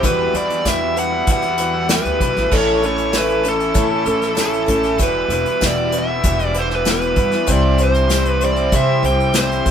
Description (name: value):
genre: folk rock and heartland rock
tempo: 96 BPM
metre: 4/4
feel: straight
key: unclear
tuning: A4 = 444 Hz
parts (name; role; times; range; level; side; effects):
- bluesy overdriven lead guitar; melody; 0.0-9.7 s; A4 to G5; -20 LUFS; equal; distortion
- picked twelve-string acoustic guitar; accompaniment; 0.0-9.7 s; A2 to C5; -21 LUFS; left 2 dB; none
- hand-pumped harmonium; sustained chords; 0.0-9.7 s; G3 to C6; -32 LUFS; right 2 dB; none
- raw garage guitar; riff; 0.0-9.7 s; E2 to E4; -23 LUFS; right 2 dB; overdrive
- upright bass; bass; 0.0-9.7 s; E1 to C3; -22 LUFS; equal; none
- unplugged drum kit; drums; 0.0-9.7 s; crash cymbal, hi-hat, kick drum, snare drum; -21 LUFS; equal; none
- tambourine; percussion; 0.7-9.5 s; none; -30 LUFS; right 7 dB; none
room: moderate studio reverb, RT60 0.5 s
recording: band playing live in one room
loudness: -14 LUFS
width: side -8 dB against mid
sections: 0.0-9.7 A section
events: none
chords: 0.0 Emadd9; 2.5 A; 5.0 Emadd9; 7.5 C